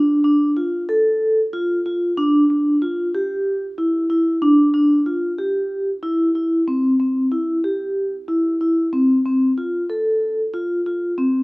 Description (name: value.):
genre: progressive instrumental, progressive.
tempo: 187 BPM (eighths).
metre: 7/8.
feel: straight.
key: C major.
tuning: A4 = 439 Hz.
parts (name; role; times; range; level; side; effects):
vibraphone with medium mallets; solo; 0.0-11.4 s; C4 to A4; -17 LUFS; equal; none.
room: light reverb, small room reverb.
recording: rough home demo mix.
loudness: -17 LUFS.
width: side -25 dB against mid.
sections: 0.0-6.7 A section; 6.7-11.4 B section.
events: none.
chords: none.